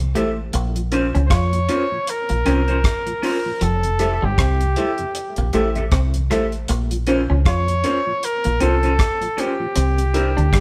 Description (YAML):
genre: lovers rock reggae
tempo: 78 BPM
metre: 4/4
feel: swing 58% on 16ths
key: unclear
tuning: A4 = 442 Hz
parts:
  - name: mellow tonewheel organ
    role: accompaniment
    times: 0.0-10.4 s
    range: F2 to E4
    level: -35 LUFS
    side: equal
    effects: overdrive, chorus vibrato, slow rotary speaker, dub echo
  - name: deep dub fingered electric bass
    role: bass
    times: 0.0-10.6 s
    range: F1 to F2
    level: -22 LUFS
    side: equal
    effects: none
  - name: FM electric piano with soft pad layer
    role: accompaniment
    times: 0.2-10.3 s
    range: Db4 to C5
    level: -28 LUFS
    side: equal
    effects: chorus
  - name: electric guitar at the edge of break-up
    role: riff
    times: 0.2-10.6 s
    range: F3 to F4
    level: -29 LUFS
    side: equal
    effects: none
  - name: electric guitar through a small old amp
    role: stabs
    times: 0.2-10.3 s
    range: Db4 to E5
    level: -26 LUFS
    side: equal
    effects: none
  - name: deep reggae drum kit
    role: drums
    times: 0.2-10.6 s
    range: hi-hat, kick drum, rim click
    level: -24 LUFS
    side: equal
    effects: none
  - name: clear flugelhorn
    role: melody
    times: 1.3-10.6 s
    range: G4 to Db5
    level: -25 LUFS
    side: equal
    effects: none
room: moderate stone room reverb, RT60 1.2 s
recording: band playing live in one room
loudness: -20 LUFS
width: mono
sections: 0.0-10.6 A section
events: none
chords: 0.0 Fmaj9 (rootless); 0.5 Bbmadd9; 3.6 Fmaj9; 6.7 Bbmadd9; 9.8 C7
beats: | 0.54 1.31 2.08 2.84 | 3.61 4.38 5.15 5.92 | 6.69 7.46 8.23 8.99 | 9.76 10.53